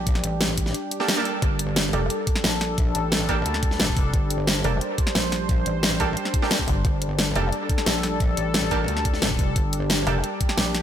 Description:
dark technical drum and bass; 177 BPM; 4/4; straight; G minor; A4 = 440 Hz
sweeping resonant pad; sustained chords; 0.0-10.8 s; G3 to C5; -28 LUFS; equal; chorus, sidechain pumping
metallic wobble bass; bass; 0.0-10.8 s; F1 to D2; -27 LUFS; equal; distortion, chorus, sidechain pumping
dubstep drum kit; drums; 0.1-10.8 s; hi-hat, snare drum; -25 LUFS; equal
electronic kick drum; drums; 0.1-10.5 s; -23 LUFS; equal
orchestra-hit-like synth stab; stabs; 1.0-10.1 s; Bb3 to A4; -29 LUFS; right 3 dB; built-in reverb, dub echo
pulsing pluck wobble bass; bass; 1.9-2.1, 4.6-7.5, 10.1-10.2 s; F1 to G1; -24 LUFS; equal; chorus
light reverb, digital ambience; -20 LUFS; side -10 dB against mid
0.0-1.4 A section; 1.4-10.8 A section
drop 0.0-1.4, 1.4-10.8
0.0 Gmadd9

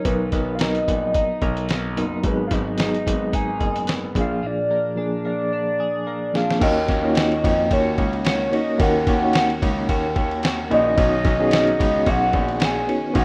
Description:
indie pop, bedroom pop; 110 BPM; 4/4; swing 55% on 16ths; Eb minor; A4 = 439 Hz
soft octave-layered synth lead; melody; 0.0-13.2 s; B4 to Ab5; -25 LUFS; equal; phaser, lush chorus, slapback echo
reed electric piano; accompaniment; 0.0-13.2 s; F3 to Eb5; -27 LUFS; equal; fast tremolo, cassette tape
twelve-string electric guitar; accompaniment; 0.0-13.2 s; Ab2 to Bb4; -35 LUFS; equal; analog chorus, warbly pitch drift
warm grand piano; bass; 0.0-13.2 s; F#1 to F2; -28 LUFS; equal
lo-fi sampler-style drum kit; drums; 0.1-13.2 s; crash cymbal, hi-hat, kick drum, ride cymbal, snare drum; -26 LUFS; equal
string machine, violins; sustained chords; 6.6-13.2 s; Eb3 to Bb4; -37 LUFS; equal
light reverb; rough home demo mix; -21 LUFS; mono
0.0-6.6 A section; 6.6-13.2 B section
drum fill 5.5-6.6
0.1 Bmaj7; 2.2 Abm7; 4.2 Bb7; 6.6 Ebm7; 11.0 Badd9

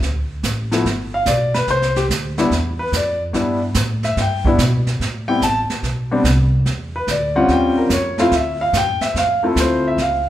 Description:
jazz piano trio; 144 BPM; 4/4; swing 67% on 8ths; C major, A minor from 5.0 s; A4 = 440 Hz
upright bass; bass; 0.0-10.3 s; G1 to B2; -21 LUFS; equal
jazz brush drum kit; drums; 0.0-10.3 s; brushed snare drum, hi-hat, kick drum, snare drum; -23 LUFS; right 2 dB
warm concert grand piano; melody; 0.7-10.3 s; F3 to A5; -17 LUFS; left 1 dB
moderate recital hall reverb, RT60 1.3 s; recorded in a church or concert hall; -16 LUFS; side -12 dB against mid
0.0-5.0 A section; 5.0-10.3 A section
grand piano solo 0.0-10.3
0.0 D5; 0.9 G; 1.7 Cmaj9; 5.0 Am9; 6.7 E7(no3); 7.5 D#13; 8.3 Dm9

